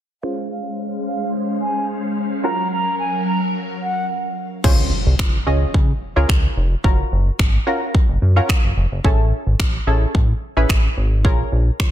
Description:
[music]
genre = dance-pop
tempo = 109 BPM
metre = 4/4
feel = straight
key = Db major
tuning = A4 = 440 Hz
[part]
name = mellow concert flute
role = melody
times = 0.2-4.1 s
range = F5 to Bb5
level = -24 LUFS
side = right 1 dB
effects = sidechain pumping, low-pass filter, ping-pong delay
[part]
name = punchy chord stab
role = accompaniment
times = 0.2-11.7 s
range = Db4 to Eb5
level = -24 LUFS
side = equal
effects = chorus, sidechain pumping, low-pass filter
[part]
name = string machine, violins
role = sustained chords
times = 0.2-4.6 s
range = Gb3 to F5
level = -23 LUFS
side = equal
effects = ensemble chorus, sidechain pumping, low-pass filter
[part]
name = chorused synth bass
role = bass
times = 4.6-11.9 s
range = F1 to Db3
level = -18 LUFS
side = equal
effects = sidechain pumping
[part]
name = pop drum kit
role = drums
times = 4.6-11.9 s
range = crash cymbal, finger snaps, kick drum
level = -17 LUFS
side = equal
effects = soft clipping on snare
[part]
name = impact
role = sound effects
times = 4.6-6.8 s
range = none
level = -27 LUFS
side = equal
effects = none
[sound]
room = light reverb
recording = dense, heavily limited modern master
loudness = -16 LUFS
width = side -12 dB against mid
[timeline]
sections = 0.2-4.6 A section; 4.6-11.9 B section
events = filter sweep 0.2-4.6; impact 4.6-6.8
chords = 0.2 Dbmaj7; 2.4 Gbmaj7; 4.6 Dbmaj7; 6.8 Gbmaj7; 9.0 Amaj7; 11.2 Bbm7

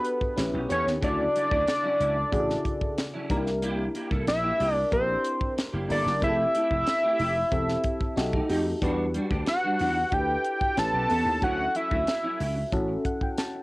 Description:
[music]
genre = polished 1980s jazz-funk pop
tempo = 92 BPM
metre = 4/4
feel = straight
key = unclear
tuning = A4 = 441 Hz
[part]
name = fat analog lead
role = melody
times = 0.0-12.7 s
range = B4 to A5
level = -26 LUFS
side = equal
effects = chorus, cassette tape
[part]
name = FM electric piano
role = accompaniment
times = 0.0-13.6 s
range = C#3 to A5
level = -32 LUFS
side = left 1 dB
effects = analog chorus
[part]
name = tight funk drum kit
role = drums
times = 0.0-13.5 s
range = hi-hat, kick drum, snare drum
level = -31 LUFS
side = equal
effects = cassette tape
[part]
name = clean electric guitar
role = riff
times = 0.2-13.6 s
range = F#3 to A4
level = -33 LUFS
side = right 1 dB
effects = ensemble chorus
[part]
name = vintage slap bass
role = bass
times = 0.4-13.0 s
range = E1 to F2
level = -31 LUFS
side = equal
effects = none
[sound]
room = light reverb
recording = home recording on cassette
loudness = -24 LUFS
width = side -22 dB against mid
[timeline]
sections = 0.0-13.6 A section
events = FM electric piano fill 12.7-13.6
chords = 0.4 A9; 1.0 Dmaj9; 3.3 C7; 6.2 Fmaj9; 8.2 B7b13; 8.8 Em9; 10.8 A9; 11.4 Dmaj9

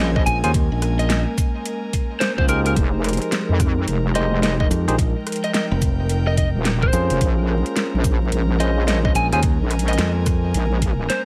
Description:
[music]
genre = glitch hop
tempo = 108 BPM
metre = 4/4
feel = swing 62% on 16ths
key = unclear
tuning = A4 = 439 Hz
[part]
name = lightly driven lead guitar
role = melody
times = 0.0-11.2 s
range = Bb4 to Ab5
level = -28 LUFS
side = equal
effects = vintage 12-bit sampler grit, delay
[part]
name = warbly tape-like pad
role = sustained chords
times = 0.0-11.2 s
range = F3 to Eb4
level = -33 LUFS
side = equal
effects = none
[part]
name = bell-like tine electric piano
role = stabs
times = 0.0-9.4 s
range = Db4 to C5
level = -30 LUFS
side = equal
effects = sidechain pumping, delay
[part]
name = wobble bass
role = bass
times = 0.0-11.1 s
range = Eb1 to F2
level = -23 LUFS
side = equal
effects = chorus
[part]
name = airy breathy pad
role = texture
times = 0.0-11.2 s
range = Bb4 to Ab5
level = -33 LUFS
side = equal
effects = chorus, sidechain pumping
[part]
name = dubstep drum kit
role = drums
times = 0.2-11.2 s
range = hi-hat, rim click, shaker, snare drum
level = -28 LUFS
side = equal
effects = studio reverb
[part]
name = electronic kick drum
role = drums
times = 0.2-11.0 s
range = none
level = -23 LUFS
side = equal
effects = studio reverb
[part]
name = modern bright fingered electric bass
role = bass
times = 0.3-10.5 s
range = F1 to F2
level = -23 LUFS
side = equal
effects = none
[sound]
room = digital ambience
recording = vinyl crackle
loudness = -20 LUFS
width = mono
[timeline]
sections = 0.0-11.2 A section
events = drum fill 11.1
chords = 0.0 Bbm7; 2.8 Fm7; 7.2 Bbm7

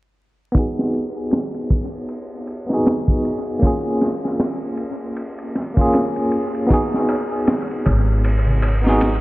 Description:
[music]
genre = trip hop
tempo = 78 BPM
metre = 4/4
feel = swing 58% on 16ths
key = G# minor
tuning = A4 = 441 Hz
[part]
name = bell-like tine electric piano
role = accompaniment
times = 0.5-9.2 s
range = A#3 to G#4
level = -21 LUFS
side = equal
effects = tremolo, low-pass filter, tape echo
[part]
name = crunchy breakbeat drum kit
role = drums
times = 0.5-9.2 s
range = hi-hat, kick drum, ride cymbal, snare drum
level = -22 LUFS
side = equal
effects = low-pass filter on kick, low-pass filter on cymbals, low-pass filter on hats, low-pass filter on snare, low-pass filter on room, dub echo
[part]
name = darbuka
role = percussion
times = 6.7-9.2 s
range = none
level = -29 LUFS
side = right 1 dB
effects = dub echo
[part]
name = upright bass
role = bass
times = 7.9-9.2 s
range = G#1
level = -17 LUFS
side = equal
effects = none
[sound]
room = light reverb, small room ambience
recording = echo-heavy mix, vinyl crackle, low-pass filter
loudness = -17 LUFS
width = side -19 dB against mid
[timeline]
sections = 0.6-9.2 A section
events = filter sweep on tine electric piano 0.6-9.2; filter sweep 0.6-9.2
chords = 0.6 G#m7; 3.6 A#m7; 6.7 G#m7

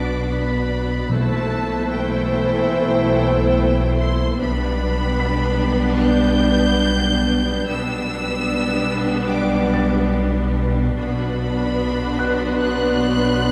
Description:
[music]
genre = cinematic, suspense film score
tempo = 73 BPM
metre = 4/4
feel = straight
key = unclear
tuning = A4 = 440 Hz
[part]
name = rich symphonic violin section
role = melody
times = 0.0-13.5 s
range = G5 to G6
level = -30 LUFS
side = equal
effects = none
[part]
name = rich symphonic violin section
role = second line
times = 0.0-13.5 s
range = F#4 to D5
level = -29 LUFS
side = equal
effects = none
[part]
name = rich symphonic viola section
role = accompaniment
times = 0.0-13.5 s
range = A3 to E4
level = -28 LUFS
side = equal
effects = none
[part]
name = dark French horn section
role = sustained chords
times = 0.0-13.5 s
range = B3 to C5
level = -28 LUFS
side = equal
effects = none
[part]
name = warm trombone section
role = sustained chords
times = 0.0-13.5 s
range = B2 to B3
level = -28 LUFS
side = equal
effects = none
[part]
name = clear symphonic double bass section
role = bass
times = 0.0-13.5 s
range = B1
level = -26 LUFS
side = equal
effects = none
[part]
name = rich symphonic cello section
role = bass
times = 0.0-13.5 s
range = B2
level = -27 LUFS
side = equal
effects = none
[part]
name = clear symphonic violin section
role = texture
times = 0.0-3.9, 11.0-13.5 s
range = B5 to B6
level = -37 LUFS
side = equal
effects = none
[part]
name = felt-muted upright piano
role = texture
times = 0.0-13.5 s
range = F#6 to B6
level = -36 LUFS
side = equal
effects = none
[part]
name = timpani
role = percussion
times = 1.1-2.3 s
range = B2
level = -29 LUFS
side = equal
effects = none
[sound]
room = wet recital hall reverb, RT60 1.5 s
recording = heard from further back in the room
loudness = -19 LUFS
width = mono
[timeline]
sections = 0.0-13.5 A section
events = none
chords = 0.0 Bm; 1.1 Am7/B; 4.4 G/B; 11.0 Bm

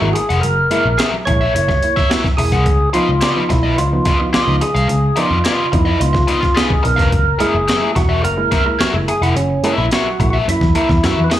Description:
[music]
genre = funk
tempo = 108 BPM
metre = 4/4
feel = straight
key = unclear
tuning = A4 = 440 Hz
[part]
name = percussive tonewheel organ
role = melody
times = 0.0-11.4 s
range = Db4 to Db5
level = -18 LUFS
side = right 1 dB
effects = slow rotary speaker, slapback echo
[part]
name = overdriven electric guitar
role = accompaniment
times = 0.0-11.3 s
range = F4 to Gb5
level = -21 LUFS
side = left 4 dB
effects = wah, slapback echo
[part]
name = reed electric piano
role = stabs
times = 0.0-11.4 s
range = Db3 to Fb4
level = -24 LUFS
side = right 3 dB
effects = overdrive, fast tremolo, slapback echo
[part]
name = vintage muted picked electric bass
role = bass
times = 0.0-11.3 s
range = Fb1 to Gb2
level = -17 LUFS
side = equal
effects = none
[part]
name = breakbeat sampler-style drum kit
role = drums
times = 0.2-11.4 s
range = hi-hat, kick drum, snare drum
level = -18 LUFS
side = equal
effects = none
[sound]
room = digital ambience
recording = live gig heard through the venue's PA, club reverb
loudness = -13 LUFS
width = side -12 dB against mid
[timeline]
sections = 0.0-11.4 A section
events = drum fill 11.0-11.4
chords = 0.0 Gb9; 2.7 Db9; 7.1 Gb9

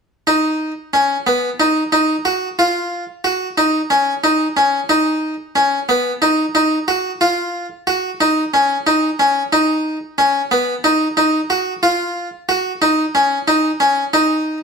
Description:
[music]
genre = progressive instrumental, progressive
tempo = 182 BPM (eighths)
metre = 7/8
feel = straight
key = unclear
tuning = A4 = 440 Hz
[part]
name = harpsichord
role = solo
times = 0.3-14.6 s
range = B3 to F#4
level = -14 LUFS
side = equal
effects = none
[sound]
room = moderate stone room reverb, RT60 1.0 s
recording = band playing live in one room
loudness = -14 LUFS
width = side -5 dB against mid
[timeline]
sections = 0.3-9.5 A section; 9.5-14.6 B section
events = none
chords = none

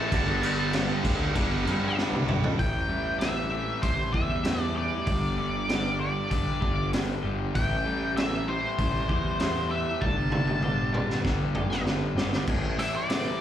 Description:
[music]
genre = quiet-loud alternative rock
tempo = 97 BPM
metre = 4/4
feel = straight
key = A minor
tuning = A4 = 440 Hz
[part]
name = octave-fuzz lead guitar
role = melody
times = 0.0-13.4 s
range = C5 to A5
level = -31 LUFS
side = equal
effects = distortion, slapback echo
[part]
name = distorted electric guitar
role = riff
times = 0.0-2.6 s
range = G2 to A3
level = -31 LUFS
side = right 15 dB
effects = overdrive, slapback echo
[part]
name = fuzz guitar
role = riff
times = 0.0-13.4 s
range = G2 to A3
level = -32 LUFS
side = left 8 dB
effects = distortion, slapback echo
[part]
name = fuzz picked electric bass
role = bass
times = 0.1-12.7 s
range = G1 to G2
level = -31 LUFS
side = right 1 dB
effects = overdrive
[part]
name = raw garage drum kit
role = drums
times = 0.1-13.2 s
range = crash cymbal, hi-hat, kick drum, snare drum, toms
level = -29 LUFS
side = equal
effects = none
[part]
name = twelve-string electric guitar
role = arpeggios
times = 2.6-13.4 s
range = A2 to G4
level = -35 LUFS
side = right 3 dB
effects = slapback echo
[sound]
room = little or no reverb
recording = live gig heard through the venue's PA, club reverb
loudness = -24 LUFS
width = side -10 dB against mid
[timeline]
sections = 0.0-2.6 A section; 2.6-12.5 B section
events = drum fill 2.0-2.6, 10.0-12.5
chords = 0.1 Gsus2; 2.6 Am7; 5.1 Gsus2; 7.5 Am7; 10.0 Gsus2; 12.5 Am7

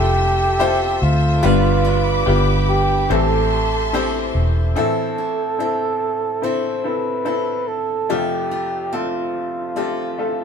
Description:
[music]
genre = pop ballad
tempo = 72 BPM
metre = 4/4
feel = straight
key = A minor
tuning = A4 = 438 Hz
[part]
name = breathy flugelhorn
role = melody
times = 0.0-10.4 s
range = F4 to C5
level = -22 LUFS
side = right 2 dB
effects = none
[part]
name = bright upright piano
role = accompaniment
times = 0.0-10.4 s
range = F2 to E5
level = -23 LUFS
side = left 4 dB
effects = none
[part]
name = rich studio string section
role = sustained chords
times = 0.0-4.8 s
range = G4 to E6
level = -26 LUFS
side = left 1 dB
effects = none
[part]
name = picked steel-string acoustic guitar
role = arpeggios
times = 0.0-10.4 s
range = A2 to B4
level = -26 LUFS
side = right 2 dB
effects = none
[part]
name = vintage muted fingered electric bass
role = bass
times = 0.0-4.7 s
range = E1 to D2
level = -19 LUFS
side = equal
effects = none
[sound]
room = light reverb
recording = band playing live in one room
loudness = -17 LUFS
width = side -6 dB against mid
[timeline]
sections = 0.0-4.8 A section; 4.8-10.4 B section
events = none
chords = 0.0 Fmaj7; 1.4 G7; 3.1 Am7; 4.8 Am; 8.1 Fadd9

